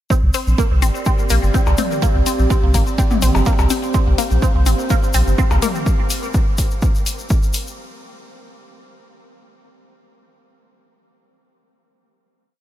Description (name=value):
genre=minimal techno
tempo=125 BPM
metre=4/4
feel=straight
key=unclear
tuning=A4 = 438 Hz
part: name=resonant blip pluck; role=riff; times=0.1-5.7 s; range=Bb3 to C4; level=-24 LUFS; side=left 1 dB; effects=phaser, sidechain pumping, analog delay
part: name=electronic kick drum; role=drums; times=0.1-7.4 s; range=none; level=-17 LUFS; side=equal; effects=none
part: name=egg shaker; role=percussion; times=0.1-7.8 s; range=none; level=-30 LUFS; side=left 5 dB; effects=none
part: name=warbly tape-like pad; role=texture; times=0.1-5.9 s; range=C4 to D5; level=-26 LUFS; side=right 2 dB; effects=chorus, built-in reverb, sidechain pumping
part: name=saturated sub bass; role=bass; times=0.2-5.6 s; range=G1 to C2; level=-15 LUFS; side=equal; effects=sidechain pumping
part: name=electronic hi-hat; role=drums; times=0.3-7.6 s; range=none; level=-28 LUFS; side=left 2 dB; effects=none
part: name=electronic percussion blips and toms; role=percussion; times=1.7-5.7 s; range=none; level=-27 LUFS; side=left 3 dB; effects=overdrive, tape echo
room=light reverb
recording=none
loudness=-14 LUFS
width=side -13 dB against mid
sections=0.1-7.8 groove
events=none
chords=0.1 C5